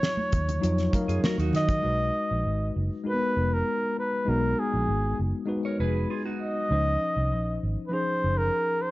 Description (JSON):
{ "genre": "lush 1970s-style soul", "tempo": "99 BPM", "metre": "4/4", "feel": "straight", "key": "unclear", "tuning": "A4 = 440 Hz", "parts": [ { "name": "breathy flugelhorn", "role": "melody", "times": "0.0-8.9 s", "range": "Ab4 to Eb5", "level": "-28 LUFS", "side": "equal", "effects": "none" }, { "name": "tine electric piano", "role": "accompaniment", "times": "0.0-8.9 s", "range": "F3 to F5", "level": "-30 LUFS", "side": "left 2 dB", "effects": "medium stereo tremolo" }, { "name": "damped 70s drum kit", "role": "drums", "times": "0.0-1.8 s", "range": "hi-hat, kick drum, snare drum", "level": "-28 LUFS", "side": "equal", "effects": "none" }, { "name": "congas", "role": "percussion", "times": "0.0-1.7 s", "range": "none", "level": "-36 LUFS", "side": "right 2 dB", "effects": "none" }, { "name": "vintage muted fingered electric bass", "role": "bass", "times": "0.3-8.5 s", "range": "F1 to Eb3", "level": "-27 LUFS", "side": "equal", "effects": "none" }, { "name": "clean electric guitar", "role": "riff", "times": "1.1-1.8, 5.7-6.7 s", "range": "Eb4 to Db5", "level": "-34 LUFS", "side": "right 4 dB", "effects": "phaser" } ], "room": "light reverb", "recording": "dark, warm production, nothing above 7.7 kHz", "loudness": "-24 LUFS", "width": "side -18 dB against mid", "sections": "0.0-1.8 A section; 1.8-8.9 B section", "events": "none", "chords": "0.0 Ebm9; 1.8 Cb6; 6.7 Dbmaj9" }